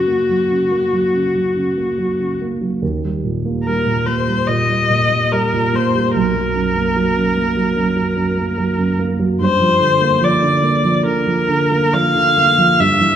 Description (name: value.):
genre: classical, impressionist duo for viola and grand piano.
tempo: 72 BPM.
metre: 4/4.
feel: rubato.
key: unclear.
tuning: A4 = 439 Hz.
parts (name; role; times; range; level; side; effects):
rich viola; melody; 0.0-13.2 s; Gb4 to F5; -16 LUFS; left 2 dB; none.
dark concert grand piano; accompaniment; 0.0-13.2 s; B1 to Bb3; -17 LUFS; right 2 dB; none.
room: wet recital hall reverb, RT60 1.6 s.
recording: none.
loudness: -14 LUFS.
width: side -9 dB against mid.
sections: 0.0-13.2 A section.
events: none.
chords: 0.0 Gb; 2.8 Eb; 6.2 B5; 9.4 Gm7.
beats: 0.28 1.14 1.98 | 2.82 3.65 4.49 5.33 | 6.16 6.98 7.78 8.58 | 9.40 10.23 11.06 11.94 | 12.79.